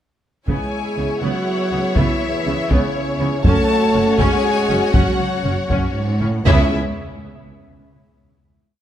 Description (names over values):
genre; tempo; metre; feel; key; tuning
cinematic, epic orchestral film score; 80 BPM (dotted quarters); 6/8; straight; C# minor; A4 = 443 Hz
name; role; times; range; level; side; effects
warm symphonic violin section; melody; 0.5-6.8 s; C#5 to E5; -27 LUFS; left 3 dB; none
warm studio violin section; second line; 0.5-6.8 s; E4 to A5; -26 LUFS; left 4 dB; none
clear symphonic viola section; accompaniment; 0.5-6.8 s; B3 to G#4; -27 LUFS; right 1 dB; none
clear French horn section; sustained chords; 0.5-6.7 s; C#4 to C#5; -24 LUFS; left 1 dB; none
mellow trombone section; sustained chords; 0.5-6.7 s; C#3 to A3; -24 LUFS; right 2 dB; none
warm symphonic string section; sustained chords; 0.5-6.8 s; B3 to F#5; -27 LUFS; left 1 dB; none
warm symphonic cello section; bass; 0.5-6.8 s; C#2 to C#3; -24 LUFS; right 2 dB; none
warm symphonic double bass section; bass; 0.5-6.8 s; F#1 to C#2; -24 LUFS; right 2 dB; none
taiko ensemble; drums; 0.5-6.6 s; none; -19 LUFS; equal; none
room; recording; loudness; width
moderate concert hall reverb, RT60 2.1 s; close, detailed microphones; -16 LUFS; side -11 dB against mid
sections
0.5-6.5 theme; 6.5-8.0 final chord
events
none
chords
0.5 C#m7; 3.5 F#m; 6.5 C#m7